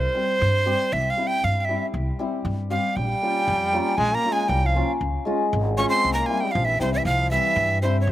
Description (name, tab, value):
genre	klezmer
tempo	118 BPM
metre	2/4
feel	straight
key	C phrygian dominant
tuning	A4 = 439 Hz
part	breathy bright alto recorder	melody	0.0-8.1 s	C5 to Db6	-22 LUFS	right 2 dB	none
part	hammered dulcimer	accompaniment	0.0-8.1 s	G3 to G4	-27 LUFS	left 3 dB	slapback echo
part	upright bass	bass	0.0-8.1 s	Ab1 to G2	-25 LUFS	equal	none
part	bright trombone	second line	3.0-8.1 s	C3 to Db4	-29 LUFS	left 2 dB	none
room	little or no reverb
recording	recorded outdoors, with no room sound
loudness	-20 LUFS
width	side -14 dB against mid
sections	0.0-7.1 A section; 7.1-8.1 B section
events	recorder solo 0.0-7.1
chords	0.0 C; 3.0 Bbm; 5.0 Db; 6.0 C